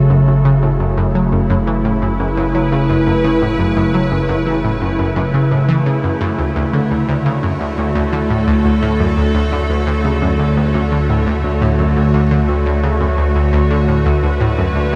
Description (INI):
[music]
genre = ambient, sequencer-driven space music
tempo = 86 BPM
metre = 4/4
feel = straight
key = unclear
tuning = A4 = 435 Hz
[part]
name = evolving wavetable pad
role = sustained chords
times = 0.0-15.0 s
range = C#3 to B4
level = -18 LUFS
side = equal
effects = ensemble chorus, built-in reverb
[part]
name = analog pluck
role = riff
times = 0.0-15.0 s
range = D2 to F#3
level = -21 LUFS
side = equal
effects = chorus, cassette tape, tape echo
[part]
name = round analog bass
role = bass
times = 0.0-15.0 s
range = F#1 to D2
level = -23 LUFS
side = equal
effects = tube saturation
[part]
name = bubbling stepped-filter texture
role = texture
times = 0.8-15.0 s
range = C#5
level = -37 LUFS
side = equal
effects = none
[sound]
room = wet cathedral reverb, RT60 5.7 s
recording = dreamy mix soaked in reverb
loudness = -15 LUFS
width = mono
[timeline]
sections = 0.0-15.0 A section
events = none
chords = 0.0 F#m; 6.4 D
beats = 0.10 | 0.80 1.50 2.20 2.90 | 3.59 4.29 4.99 5.69 | 6.38 7.08 7.78 8.48 | 9.17 9.87 10.57 11.27 | 11.96 12.66 13.36 14.06 | 14.76